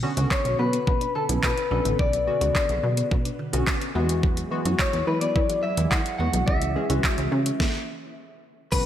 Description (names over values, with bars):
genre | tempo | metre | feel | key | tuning
dance-pop | 107 BPM | 4/4 | straight | B dorian | A4 = 438 Hz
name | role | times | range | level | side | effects
glassy digital keys | accompaniment | 0.0-8.9 s | C#3 to A4 | -30 LUFS | equal | chorus, sidechain pumping
string machine, cellos | sustained chords | 0.0-8.9 s | B2 to B4 | -36 LUFS | equal | none
plucky analog bass | bass | 0.0-8.9 s | A1 to E3 | -26 LUFS | equal | sidechain pumping
mallet-like synth pluck | arpeggios | 0.2-8.8 s | D3 to E5 | -36 LUFS | left 1 dB | none
pop drum kit | drums | 0.2-8.9 s | crash cymbal, handclaps, hi-hat, kick drum, shaker, snare drum | -26 LUFS | equal | overdrive
electric guitar at the edge of break-up | melody | 0.3-8.9 s | A4 to F#5 | -27 LUFS | left 3 dB | digital delay, slapback echo
room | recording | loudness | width
moderate lush hall reverb, RT60 2.4 s | big arena sound | -21 LUFS | side -11 dB against mid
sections
0.0-8.7 A section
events
stop 7.6-8.7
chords
0.0 Bmadd9; 4.0 Eadd9; 6.5 C#m